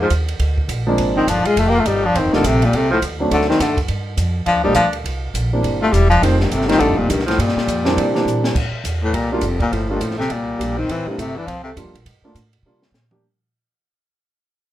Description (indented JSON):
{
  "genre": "jazz, small-group swing and bop",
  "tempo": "206 BPM",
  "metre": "4/4",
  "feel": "swing 60% on 8ths",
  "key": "unclear",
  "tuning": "A4 = 441 Hz",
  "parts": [
    { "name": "breathy baritone saxophone", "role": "melody", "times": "0.0-11.7 s", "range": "D2 to Bb3", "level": "-18 LUFS", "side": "left 3 dB", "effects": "plate reverb" },
    { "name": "breathy tenor saxophone", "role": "second line", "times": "0.0-11.8 s", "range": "Bb2 to G4", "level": "-24 LUFS", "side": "right 2 dB", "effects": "none" },
    { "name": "upright bass", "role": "bass", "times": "0.0-13.2 s", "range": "Eb1 to C3", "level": "-21 LUFS", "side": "right 1 dB", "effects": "none" },
    { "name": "compact cocktail drum kit", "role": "drums", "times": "0.1-13.2 s", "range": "crash cymbal, hi-hat, kick drum, ride cymbal, snare drum, toms", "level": "-26 LUFS", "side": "right 1 dB", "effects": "none" },
    { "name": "dark baby grand piano", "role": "accompaniment", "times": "0.9-13.2 s", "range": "Eb3 to G4", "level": "-21 LUFS", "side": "right 1 dB", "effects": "none" }
  ],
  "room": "moderate studio reverb, RT60 0.5 s",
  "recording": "none",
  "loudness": "-15 LUFS",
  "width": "side -13 dB against mid",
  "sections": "0.0-8.6 A section; 8.6-13.2 B section",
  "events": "drum fill 8.3, 12.6-13.2; fade-out 8.6-13.2",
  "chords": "0.0 Bb9; 1.6 F9; 2.7 Adim; 3.3 D7b9; 3.9 Gm7; 5.1 C9; 6.2 F9; 7.4 Gm7; 8.0 C9; 8.6 A5; 9.1 C7sus4; 9.7 Gm9; 10.3 C5; 10.9 Am7; 11.5 C7sus4; 12.1 Gm9; 12.6 C7sus4",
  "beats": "0.10 | 0.39 0.68 0.97 1.26 | 1.56 1.85 2.14 2.43 | 2.72 3.01 3.31 3.60 | 3.89 4.18 4.47 4.76 | 5.05 5.34 5.64 5.93 | 6.22 6.51 6.80 7.09 | 7.38 7.68 7.97 8.26 | 8.55 8.84 9.14 9.43 | 9.72 10.01 10.30 10.60 | 10.89 11.18 11.47 11.76 | 12.05 12.35 12.64 12.93"
}